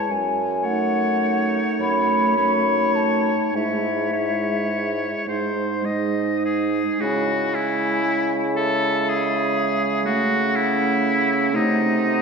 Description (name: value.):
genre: classical, slow romantic movement for wind quintet.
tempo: 33-42 BPM (dotted quarters).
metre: 6/8.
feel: rubato.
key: C# minor.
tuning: A4 = 440 Hz.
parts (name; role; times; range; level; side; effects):
hollow concert flute; melody; 0.0-12.2 s; E5 to B5; -25 LUFS; left 4 dB; none.
bright oboe; second line; 0.0-12.2 s; Eb4 to D#5; -24 LUFS; left 1 dB; none.
bright clarinet; accompaniment; 0.0-12.2 s; C#4 to E4; -27 LUFS; right 4 dB; none.
dark French horn; accompaniment; 0.0-12.2 s; G#3 to A3; -27 LUFS; equal; none.
warm bassoon; bass; 0.1-12.2 s; F#2 to C#3; -25 LUFS; right 3 dB; none.
room: wet concert hall reverb, RT60 2.2 s.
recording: heard from further back in the room.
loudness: -19 LUFS.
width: side -5 dB against mid.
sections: 0.0-7.0 A section; 7.0-12.2 A section.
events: none.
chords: 0.1 D#m7b5/F#; 3.5 C#m/G#; 5.3 G#; 7.0 C#m; 10.1 A6/C#; 11.6 Cdim7.